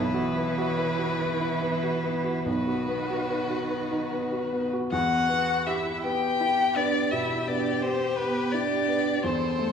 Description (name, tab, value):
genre	classical, slow romantic movement for piano quartet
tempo	46-57 BPM (dotted quarters)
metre	12/8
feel	rubato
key	E minor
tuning	A4 = 440 Hz
part	warm violin	melody	0.0-9.7 s	B4 to G5	-28 LUFS	left 4 dB	none
part	rich cello	second line	0.0-9.7 s	D#3 to G4	-31 LUFS	right 5 dB	none
part	warm violin	second line	0.0-9.7 s	E4 to A4	-35 LUFS	left 1 dB	none
part	warm baby grand piano	accompaniment	0.0-9.7 s	B1 to B4	-29 LUFS	equal	none
room	wet recital hall reverb, RT60 1.5 s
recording	recorded in a church or concert hall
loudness	-24 LUFS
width	side -7 dB against mid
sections	0.0-4.9 A section; 4.9-9.7 B section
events	none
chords	0.0 Bsus4; 2.5 B; 4.9 Em